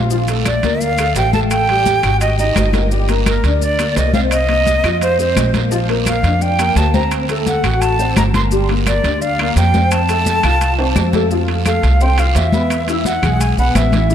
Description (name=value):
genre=Afro-Cuban jazz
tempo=171 BPM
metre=4/4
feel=straight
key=Bb major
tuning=A4 = 440 Hz
part: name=dark concert grand piano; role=accompaniment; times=0.0-14.1 s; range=E3 to F6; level=-20 LUFS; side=left 3 dB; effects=ensemble chorus
part: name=upright bass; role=bass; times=0.0-14.1 s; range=G1 to F2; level=-17 LUFS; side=equal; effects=none
part: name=congas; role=percussion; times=0.1-14.1 s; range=none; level=-23 LUFS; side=left 3 dB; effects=none
part: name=guiro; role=percussion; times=0.1-14.1 s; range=none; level=-29 LUFS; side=right 10 dB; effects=none
part: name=maracas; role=percussion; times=0.1-14.1 s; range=none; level=-32 LUFS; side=left 6 dB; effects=none
part: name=timbales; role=percussion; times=0.3-14.1 s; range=none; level=-26 LUFS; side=right 6 dB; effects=none
part: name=breathy bright jazz flute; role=melody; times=0.5-14.1 s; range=Bb4 to C6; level=-18 LUFS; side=right 1 dB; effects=diffuse ambient delay
part: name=claves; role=percussion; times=0.5-13.9 s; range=none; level=-31 LUFS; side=left 8 dB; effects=none
room=moderate plate reverb, RT60 3.6 s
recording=dreamy mix soaked in reverb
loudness=-13 LUFS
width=side -9 dB against mid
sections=0.1-11.3 A section; 11.3-14.1 B section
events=drum fill 10.8-11.3; flute solo 11.3-14.1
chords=0.1 Bbmaj7; 1.5 Gsus2; 2.2 Absus2; 2.9 Gmadd11; 4.3 Cm7; 5.0 F5; 5.7 Bb6; 7.1 D7; 8.5 Gm7; 9.9 F; 11.3 Fmaj7; 12.7 E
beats=| 0.11 0.46 0.81 1.16 | 1.51 1.86 2.21 2.56 | 2.91 3.26 3.61 3.96 | 4.31 4.66 5.01 5.37 | 5.71 6.07 6.42 6.77 | 7.12 7.47 7.82 8.17 | 8.52 8.87 9.21 9.56 | 9.91 10.26 10.61 10.96 | 11.31 11.66 12.01 12.36 | 12.71 13.06 13.40 13.75 | 14.10